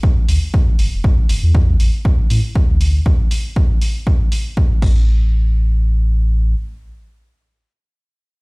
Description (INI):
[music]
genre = acid house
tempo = 119 BPM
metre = 4/4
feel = swing 54% on 16ths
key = unclear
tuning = A4 = 440 Hz
[part]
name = electronic kick drum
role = drums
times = 0.0-4.9 s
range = none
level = -14 LUFS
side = equal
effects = none
[part]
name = warm sub bass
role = bass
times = 0.3-6.5 s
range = E1 to A2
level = -14 LUFS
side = equal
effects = sidechain pumping
[part]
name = punchy analog drum machine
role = drums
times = 0.3-4.9 s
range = crash cymbal, hi-hat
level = -30 LUFS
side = right 1 dB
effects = none
[sound]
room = digital ambience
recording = played on a big sound system in a bare room, large studio reverb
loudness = -13 LUFS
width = side -32 dB against mid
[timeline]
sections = 0.0-5.1 A section; 5.1-8.4 B section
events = none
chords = none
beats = 0.03 0.54 | 1.04 1.55 2.05 2.56 | 3.06 3.56 4.07 4.57 | 5.08 5.58 6.08